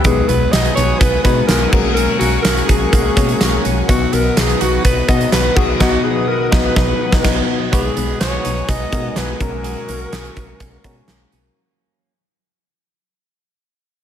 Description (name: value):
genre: 1980s-style pop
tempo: 125 BPM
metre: 4/4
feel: straight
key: unclear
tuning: A4 = 440 Hz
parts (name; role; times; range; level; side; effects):
- raspy alto saxophone; melody; 0.0-11.1 s; F#4 to D#5; -21 LUFS; left 1 dB; none
- FM electric piano; accompaniment; 0.0-11.6 s; B2 to C#5; -21 LUFS; left 5 dB; chorus
- chorused pulse-width pad; sustained chords; 0.0-11.5 s; B3 to D#6; -26 LUFS; right 1 dB; none
- direct-recorded clean electric guitar; riff; 0.0-12.1 s; F#3 to G#4; -27 LUFS; right 7 dB; lush chorus, ping-pong delay
- solid FM bass; bass; 0.0-11.5 s; B1 to B2; -21 LUFS; equal; none
- huge arena drum kit; drums; 0.0-11.4 s; crash cymbal, hi-hat, kick drum, snare drum, tambourine; -17 LUFS; equal; gated reverb
room: light reverb, small room reverb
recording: none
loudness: -13 LUFS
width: side -9 dB against mid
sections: 0.0-7.7 A section; 7.7-11.6 B section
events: band accent 5.8-7.7; fade-out 7.7-11.6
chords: 0.0 G#m7/B; 1.7 F#add9/B; 3.9 B; 7.7 G#m7/B; 9.4 F#add9/B